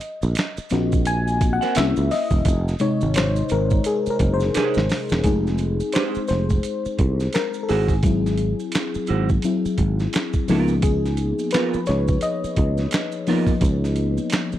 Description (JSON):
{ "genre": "R&B, neo-soul", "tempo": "86 BPM", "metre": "4/4", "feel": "swing 59% on 16ths", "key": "unclear", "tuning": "A4 = 442 Hz", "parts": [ { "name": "mellow FM electric piano", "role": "accompaniment", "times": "0.0-14.6 s", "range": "C3 to Ab5", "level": "-23 LUFS", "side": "left 3 dB", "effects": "chorus" }, { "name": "boom bap sampler-style drum kit", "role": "drums", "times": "0.0-14.5 s", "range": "hi-hat, kick drum, snare drum", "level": "-23 LUFS", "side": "right 1 dB", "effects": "none" }, { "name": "maracas and finger snaps", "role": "percussion", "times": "0.0-14.6 s", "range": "none", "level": "-37 LUFS", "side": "right 4 dB", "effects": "none" }, { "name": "sustaining fretless electric bass", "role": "bass", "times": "0.2-14.6 s", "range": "E1 to Db2", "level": "-22 LUFS", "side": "right 1 dB", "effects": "none" }, { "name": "electric guitar through a small old amp", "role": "second line", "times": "1.6-13.5 s", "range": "Cb4 to Gb5", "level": "-26 LUFS", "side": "right 8 dB", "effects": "none" } ], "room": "little or no reverb", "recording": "dry, close 1970s-style studio recording", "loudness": "-19 LUFS", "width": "side -12 dB against mid", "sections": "0.0-5.2 A section; 5.2-14.6 B section", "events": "FM electric piano solo 0.0-5.2, 5.2-14.6; drum fill 4.5-5.2", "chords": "0.0 Ab9; 1.8 C7b9; 2.5 Fm7 (rootless); 5.2 Fm7; 7.7 Abaug7; 10.5 Db13" }